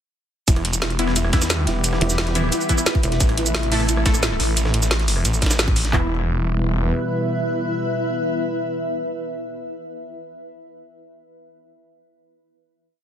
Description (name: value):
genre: dark technical drum and bass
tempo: 176 BPM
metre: 4/4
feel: straight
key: E minor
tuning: A4 = 440 Hz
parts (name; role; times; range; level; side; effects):
- sweeping resonant pad; sustained chords; 0.5-9.4 s; B2 to G4; -28 LUFS; left 1 dB; wide subtle chorus, sidechain pumping
- felt-muted upright piano; arpeggios; 0.5-6.1 s; E4; -30 LUFS; right 5 dB; sidechain pumping, ping-pong delay
- snarling distorted saw bass; bass; 0.5-6.9 s; E1 to E2; -21 LUFS; equal; distortion, overdrive, sidechain pumping
- breakbeat sampler-style drum kit; drums; 0.5-5.9 s; ride cymbal, snare drum; -29 LUFS; right 2 dB; high-pass filter on cymbals, high-pass filter on snare
- drum and bass drum kit; drums; 0.5-6.0 s; handclaps, kick drum, toms; -19 LUFS; equal; none
- drum and bass drum kit; drums; 0.5-5.9 s; hi-hat, rim click, shaker, snare drum; -23 LUFS; right 1 dB; none
- granular cloud pad; texture; 1.6-9.4 s; E4 to E5; -27 LUFS; left 1 dB; built-in reverb, sidechain pumping
- orchestra-hit-like synth stab; stabs; 1.0-9.9 s; E3 to A4; -26 LUFS; left 2 dB; built-in reverb, ping-pong delay
- pulsing pluck wobble bass; bass; 2.0-3.2 s; E1; -22 LUFS; equal; chorus
room: light reverb, digital ambience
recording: dense, heavily limited modern master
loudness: -18 LUFS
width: side -9 dB against mid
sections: 0.5-5.9 drop; 5.9-8.7 final chord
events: drop 0.5-5.9; band accent 5.6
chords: 0.5 Em; 3.2 Am; 5.9 Em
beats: | 0.48 0.82 1.16 1.50 | 1.84 2.18 2.52 2.86 | 3.21 3.55 3.89 4.23 | 4.57 4.91 5.25 5.59 | 5.93 6.27 6.61 6.96 | 7.30 7.64 7.98 8.32